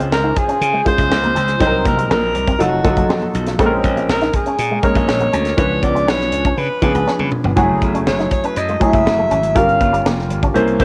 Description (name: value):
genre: polished 1980s jazz-funk pop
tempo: 121 BPM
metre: 4/4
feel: straight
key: Db major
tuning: A4 = 439 Hz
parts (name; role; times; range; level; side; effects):
- warm baby grand piano; accompaniment; 0.0-10.8 s; F3 to C5; -21 LUFS; equal; analog chorus, cassette tape
- electric guitar with an envelope filter; riff; 0.0-10.8 s; G3 to Gb4; -27 LUFS; equal; ensemble chorus, cassette tape
- glassy slap bass; bass; 0.0-10.8 s; F1 to Db3; -24 LUFS; equal; none
- tight funk drum kit; drums; 0.0-10.8 s; hi-hat, kick drum, snare drum, toms; -23 LUFS; equal; cassette tape
- breathy alto saxophone; melody; 0.1-10.1 s; Gb4 to F5; -21 LUFS; equal; cassette tape
- congas; percussion; 0.1-10.8 s; none; -36 LUFS; equal; none
room: light reverb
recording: home recording on cassette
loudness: -16 LUFS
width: mono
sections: 0.0-10.8 A section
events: drum fill 7.1-7.6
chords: 0.0 Dbmaj7; 1.6 Cm7b5; 2.6 F7b9; 3.6 Bbm9; 5.6 Db7b9; 7.6 Gbm9; 9.6 Gm7b5